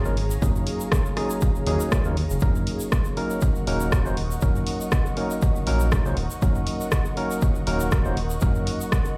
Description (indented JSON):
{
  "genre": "afro house",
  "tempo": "120 BPM",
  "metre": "4/4",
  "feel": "swing 55% on 16ths",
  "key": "Eb minor",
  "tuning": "A4 = 439 Hz",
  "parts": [
    { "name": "ethereal airy pad", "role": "sustained chords", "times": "0.0-9.2 s", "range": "Ab4 to Db6", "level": "-37 LUFS", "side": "equal", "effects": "ensemble chorus, built-in reverb, sidechain pumping" },
    { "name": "tine electric piano", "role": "stabs", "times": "0.0-9.1 s", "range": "Gb3 to C5", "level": "-30 LUFS", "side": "equal", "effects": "sidechain pumping, delay" },
    { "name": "round analog bass", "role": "bass", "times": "0.0-8.5 s", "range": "Eb1 to Eb2", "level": "-28 LUFS", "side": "equal", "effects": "tube saturation, sidechain pumping" },
    { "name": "egg shaker", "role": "percussion", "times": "0.0-9.1 s", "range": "none", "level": "-42 LUFS", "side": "equal", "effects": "none" },
    { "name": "house drum kit", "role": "drums", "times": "0.2-9.0 s", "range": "hi-hat, rim click, toms", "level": "-32 LUFS", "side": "equal", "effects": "none" },
    { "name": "electronic kick drum", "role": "drums", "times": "0.4-9.0 s", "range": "none", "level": "-26 LUFS", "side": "equal", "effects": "none" }
  ],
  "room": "digital ambience",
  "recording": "played on a big sound system in a bare room, large studio reverb",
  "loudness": "-23 LUFS",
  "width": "mono",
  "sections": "0.0-9.2 A section",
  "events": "none",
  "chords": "0.0 Ab9sus4; 2.4 Ebm7"
}